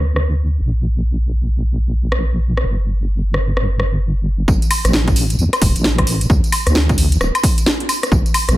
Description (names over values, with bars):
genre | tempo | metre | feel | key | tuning
UK garage, two-step garage | 132 BPM | 4/4 | swing 62% on 16ths | unclear | A4 = 440 Hz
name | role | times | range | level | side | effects
deep soft wobble bass | bass | 0.0-8.6 s | D1 to E2 | -16 LUFS | equal | chorus
house drum kit | drums | 0.2-8.6 s | hi-hat, rim click, snare drum, tambourine, woodblock | -19 LUFS | equal | overdrive
electronic kick drum | drums | 4.5-8.2 s | none | -17 LUFS | equal | overdrive
room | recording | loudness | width
little or no reverb | low-pass filter | -14 LUFS | side -16 dB against mid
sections
0.0-4.5 A section; 4.5-8.6 B section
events
filter sweep 0.0-4.5; drop 4.5-8.6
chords
none